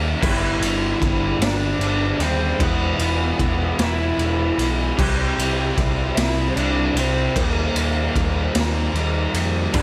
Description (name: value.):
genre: quiet-loud alternative rock.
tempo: 50 BPM (dotted quarters).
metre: 6/8.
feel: straight.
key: unclear.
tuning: A4 = 439 Hz.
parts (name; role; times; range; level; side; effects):
thick fuzz guitar; riff; 0.0-9.8 s; G2 to E4; -30 LUFS; equal; distortion.
thick fuzz guitar; riff; 0.0-9.8 s; G2 to E4; -30 LUFS; equal; distortion.
overdriven picked electric bass; bass; 0.0-9.8 s; E1 to F2; -26 LUFS; equal; none.
lead guitar through a small cranked amp; melody; 0.2-9.8 s; Bb3 to G5; -28 LUFS; equal; overdrive.
raw garage drum kit; drums; 0.2-9.8 s; crash cymbal, kick drum, ride cymbal, snare drum; -25 LUFS; equal; none.
room: light reverb.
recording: none.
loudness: -21 LUFS.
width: mono.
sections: 0.0-9.8 A section.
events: none.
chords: 0.2 G; 2.6 E; 5.0 C; 7.4 Eb.